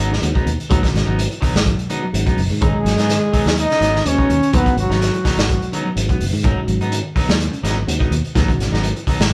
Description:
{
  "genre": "afrobeat",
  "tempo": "126 BPM",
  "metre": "4/4",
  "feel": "swing 53% on 16ths",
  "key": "G# minor",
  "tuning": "A4 = 440 Hz",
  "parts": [
    { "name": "percussive tonewheel organ", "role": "accompaniment", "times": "0.0-8.9 s", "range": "D#3 to G#4", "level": "-30 LUFS", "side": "equal", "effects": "slow rotary speaker, chorus vibrato" },
    { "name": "electric guitar at the edge of break-up", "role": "arpeggios", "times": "0.0-9.2 s", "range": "C#3 to F#3", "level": "-29 LUFS", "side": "equal", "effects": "none" },
    { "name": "electric guitar at the edge of break-up", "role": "stabs", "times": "0.0-9.2 s", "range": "F#3 to D#4", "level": "-30 LUFS", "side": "equal", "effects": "none" },
    { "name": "fingered electric bass", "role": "bass", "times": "0.0-9.3 s", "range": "F#1 to G#2", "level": "-23 LUFS", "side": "equal", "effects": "none" },
    { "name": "crunchy breakbeat drum kit", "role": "drums", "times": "0.1-9.3 s", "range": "hi-hat, kick drum, snare drum", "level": "-22 LUFS", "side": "equal", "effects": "none" },
    { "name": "mellow trombone", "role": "melody", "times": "2.6-5.7 s", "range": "F#3 to D#4", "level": "-21 LUFS", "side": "equal", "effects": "none" },
    { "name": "breathy trumpet", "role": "second line", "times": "2.6-5.7 s", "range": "F#4 to D#5", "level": "-28 LUFS", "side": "equal", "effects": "none" }
  ],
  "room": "moderate studio reverb, RT60 0.9 s",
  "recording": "band playing live in one room",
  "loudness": "-18 LUFS",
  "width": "mono",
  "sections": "0.0-9.3 A section",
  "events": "none",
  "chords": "0.0 G#m7",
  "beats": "0.22 | 0.70 1.18 1.66 2.14 | 2.62 3.10 3.58 4.05 | 4.53 5.01 5.49 5.96 | 6.44 6.92 7.40 7.88 | 8.35 8.83 9.31"
}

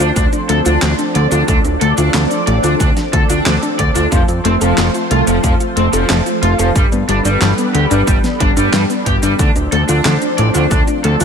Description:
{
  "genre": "synthwave",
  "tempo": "91 BPM",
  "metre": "4/4",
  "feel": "straight",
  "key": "unclear",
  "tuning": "A4 = 440 Hz",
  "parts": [
    { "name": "analog string pad", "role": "sustained chords", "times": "0.0-11.2 s", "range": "F3 to D5", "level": "-19 LUFS", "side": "right 1 dB", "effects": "ensemble chorus, phaser, sidechain pumping" },
    { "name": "thumb-piano-like synth pluck", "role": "arpeggios", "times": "0.0-11.2 s", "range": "G3 to A4", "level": "-20 LUFS", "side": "left 3 dB", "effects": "chorus, ping-pong delay" },
    { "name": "raw garage guitar", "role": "riff", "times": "0.0-11.2 s", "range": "F3 to D5", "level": "-19 LUFS", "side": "equal", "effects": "overdrive, lush chorus, ping-pong delay" },
    { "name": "fat analog bass", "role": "bass", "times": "0.0-11.2 s", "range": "D1 to G2", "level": "-16 LUFS", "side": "equal", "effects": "sidechain pumping" },
    { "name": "pop drum kit", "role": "drums", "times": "0.0-11.2 s", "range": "cabasa, handclaps, hi-hat, snare drum", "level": "-21 LUFS", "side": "right 1 dB", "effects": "small room ambience" },
    { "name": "electronic kick drum", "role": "drums", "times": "0.2-10.8 s", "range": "none", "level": "-16 LUFS", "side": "equal", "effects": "small room ambience" }
  ],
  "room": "light reverb, digital ambience",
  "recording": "none",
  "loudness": "-11 LUFS",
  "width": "side -6 dB against mid",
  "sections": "0.0-11.2 A section",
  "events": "none",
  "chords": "0.0 Dm7; 4.1 F; 6.8 Gadd9; 9.4 Dm7",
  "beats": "0.16 0.82 | 1.48 2.14 2.80 3.46 | 4.12 4.78 5.44 6.10 | 6.76 7.42 8.07 8.73 | 9.39 10.05 10.71"
}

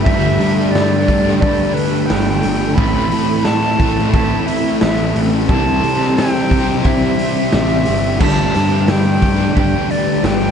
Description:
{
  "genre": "rock, shoegaze and dream pop",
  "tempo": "88 BPM",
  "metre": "4/4",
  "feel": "straight",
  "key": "G major",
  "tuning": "A4 = 440 Hz",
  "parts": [
    { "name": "breathy silver concert flute", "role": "melody", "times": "0.0-10.5 s", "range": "B4 to B5", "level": "-21 LUFS", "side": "equal", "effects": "tape echo" },
    { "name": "granular cloud pad", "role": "sustained chords", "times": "0.0-10.5 s", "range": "C4 to D6", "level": "-26 LUFS", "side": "left 1 dB", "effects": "built-in reverb" },
    { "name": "crunchy overdriven guitar", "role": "riff", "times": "0.0-10.5 s", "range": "G2 to C4", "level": "-22 LUFS", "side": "equal", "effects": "harmonic tremolo" },
    { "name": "electric guitar through a small old amp", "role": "riff", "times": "0.0-10.5 s", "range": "A2 to B4", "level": "-22 LUFS", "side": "right 14 dB", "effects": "reverse reverb" },
    { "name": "thick fuzz guitar", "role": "riff", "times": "0.0-10.5 s", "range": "G2 to C4", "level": "-21 LUFS", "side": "left 12 dB", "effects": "distortion, lush chorus" },
    { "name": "fuzz picked electric bass", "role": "bass", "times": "0.0-10.5 s", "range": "G1 to C3", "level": "-19 LUFS", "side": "equal", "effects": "overdrive" },
    { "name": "raw garage drum kit", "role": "drums", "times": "0.1-10.4 s", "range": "crash cymbal, hi-hat, kick drum, snare drum", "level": "-19 LUFS", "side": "equal", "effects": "none" }
  ],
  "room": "light reverb, studio reverb",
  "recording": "nothing above 10.3 kHz",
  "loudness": "-13 LUFS",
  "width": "side -7 dB against mid",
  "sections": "0.0-8.2 A section; 8.2-10.5 A section",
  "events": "none",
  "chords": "0.0 Gadd9; 2.8 Amadd9; 5.5 Cadd9; 8.2 Gadd9",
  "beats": "| 0.06 0.74 1.42 2.10 | 2.78 3.46 4.14 4.82 | 5.50 6.18 6.85 7.53 | 8.21 8.89 9.56 10.24"
}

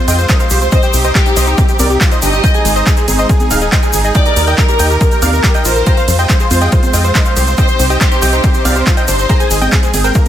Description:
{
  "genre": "uplifting trance",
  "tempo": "140 BPM",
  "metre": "4/4",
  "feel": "straight",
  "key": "unclear",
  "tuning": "A4 = 440 Hz",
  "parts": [
    { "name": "dense compressed supersaw", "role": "melody", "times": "0.0-10.3 s", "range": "G4 to Bb5", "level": "-17 LUFS", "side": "equal", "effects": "sidechain pumping, digital delay" },
    { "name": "bright grand piano", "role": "second line", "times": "0.0-10.2 s", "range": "G5 to Bb6", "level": "-24 LUFS", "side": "right 1 dB", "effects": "sidechain pumping, digital delay" },
    { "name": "muted studio string section", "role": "sustained chords", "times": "0.0-10.3 s", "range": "C3 to Bb4", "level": "-22 LUFS", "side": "right 1 dB", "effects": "sidechain pumping" },
    { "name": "wide unison pluck", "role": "arpeggios", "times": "0.1-10.2 s", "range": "C3 to Ab5", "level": "-22 LUFS", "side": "left 2 dB", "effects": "sidechain pumping, digital delay" },
    { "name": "tight sequencer bass", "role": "bass", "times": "0.1-10.1 s", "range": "Eb1 to F2", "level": "-15 LUFS", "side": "equal", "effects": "sidechain pumping" },
    { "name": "big-room dance drum kit", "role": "drums", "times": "0.1-10.3 s", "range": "congas, handclaps, hi-hat, ride cymbal", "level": "-18 LUFS", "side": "right 2 dB", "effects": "overdrive" },
    { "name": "egg shaker", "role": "percussion", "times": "0.1-10.3 s", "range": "none", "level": "-24 LUFS", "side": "left 3 dB", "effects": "none" },
    { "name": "electronic kick drum", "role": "drums", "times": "0.3-10.2 s", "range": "none", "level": "-12 LUFS", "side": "equal", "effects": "overdrive" },
    { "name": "rich symphonic violin section", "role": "second line", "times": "0.7-9.6 s", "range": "G4 to Eb5", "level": "-20 LUFS", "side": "left 2 dB", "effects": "tape echo" }
  ],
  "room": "little or no reverb",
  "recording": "none",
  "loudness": "-9 LUFS",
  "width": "side -11 dB against mid",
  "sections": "0.0-10.3 A section",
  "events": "none",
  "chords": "0.0 Fm; 0.7 Cm; 2.4 Ab; 4.2 Eb; 5.9 Fm; 7.6 Cm; 9.3 Ab",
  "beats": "0.29 | 0.72 1.15 1.58 2.01 | 2.44 2.87 3.29 3.72 | 4.15 4.58 5.01 5.44 | 5.87 6.29 6.72 7.15 | 7.58 8.01 8.44 8.87 | 9.29 9.72 10.15"
}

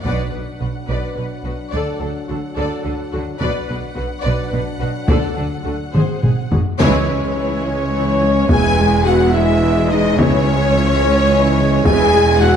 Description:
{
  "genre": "cinematic, epic orchestral film score",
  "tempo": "71 BPM (dotted quarters)",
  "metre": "6/8",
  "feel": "straight",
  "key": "B minor, C# minor from 6.8 s",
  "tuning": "A4 = 440 Hz",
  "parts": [
    { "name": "rich symphonic violin section", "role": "melody", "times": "0.0-12.6 s", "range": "C#5 to G#5", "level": "-26 LUFS", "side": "left 2 dB", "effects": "none" },
    { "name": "warm symphonic violin section", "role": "second line", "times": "0.0-12.6 s", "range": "F#4 to G#5", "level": "-25 LUFS", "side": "left 5 dB", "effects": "none" },
    { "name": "clear symphonic viola section", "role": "accompaniment", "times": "0.0-12.6 s", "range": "E3 to B4", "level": "-24 LUFS", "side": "right 1 dB", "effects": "none" },
    { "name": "mellow French horn section", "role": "sustained chords", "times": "0.0-12.6 s", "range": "F#3 to G#4", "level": "-21 LUFS", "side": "left 2 dB", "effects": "none" },
    { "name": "clear symphonic cello section", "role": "bass", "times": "0.0-12.6 s", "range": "C#2 to D3", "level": "-24 LUFS", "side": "right 2 dB", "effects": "none" },
    { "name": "rich symphonic double bass section", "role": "bass", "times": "0.0-12.6 s", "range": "E1 to D2", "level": "-22 LUFS", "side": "right 3 dB", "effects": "none" },
    { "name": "taiko ensemble", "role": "drums", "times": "0.0-12.4 s", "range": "none", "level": "-18 LUFS", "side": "equal", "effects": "none" },
    { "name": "clear symphonic string section", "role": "sustained chords", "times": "6.8-12.6 s", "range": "G#3 to G#5", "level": "-26 LUFS", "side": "right 1 dB", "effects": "none" },
    { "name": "warm trombone section", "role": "sustained chords", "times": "6.8-12.6 s", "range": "E3 to G#3", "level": "-25 LUFS", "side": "right 4 dB", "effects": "none" },
    { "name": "clear trumpet section", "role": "stabs", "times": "6.8-12.6 s", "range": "C#5 to G#5", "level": "-22 LUFS", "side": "equal", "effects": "none" },
    { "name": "timpani", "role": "percussion", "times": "6.8-7.6, 10.2-11.0 s", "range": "C#3", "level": "-25 LUFS", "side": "left 2 dB", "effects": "none" }
  ],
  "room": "moderate scoring stage reverb, RT60 1.8 s",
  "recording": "dark, warm production",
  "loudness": "-14 LUFS",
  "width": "side -8 dB against mid",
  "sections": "0.0-6.8 A section; 6.8-12.6 B section",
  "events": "band accent 0.0-0.6, 6.8-7.4; drum fill 5.9-6.8",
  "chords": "0.0 Bm; 1.7 D; 3.4 Bm; 5.1 D; 5.9 G#7; 6.8 C#m; 8.5 E; 10.2 C#m; 11.9 E",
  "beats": "| 0.04 0.88 | 1.73 2.57 | 3.40 4.24 | 5.09 5.95 | 6.81 7.66 | 8.50 9.34 | 10.19 11.02 | 11.86"
}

